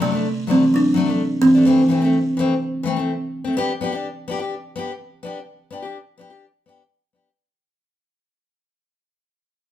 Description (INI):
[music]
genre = highlife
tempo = 126 BPM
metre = 4/4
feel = straight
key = G major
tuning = A4 = 440 Hz
[part]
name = buzzing kalimba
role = melody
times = 0.0-3.0 s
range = C3 to D4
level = -17 LUFS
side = right 1 dB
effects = none
[part]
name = picked steel-string acoustic guitar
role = accompaniment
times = 0.0-7.3 s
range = E3 to G4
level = -23 LUFS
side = left 4 dB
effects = none
[sound]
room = wet large studio reverb, RT60 0.9 s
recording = band playing live in one room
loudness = -16 LUFS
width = side -12 dB against mid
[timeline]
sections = 0.0-3.6 A section; 3.6-7.4 B section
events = fade-out 3.6-7.4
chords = 0.0 D; 1.7 Am; 3.6 G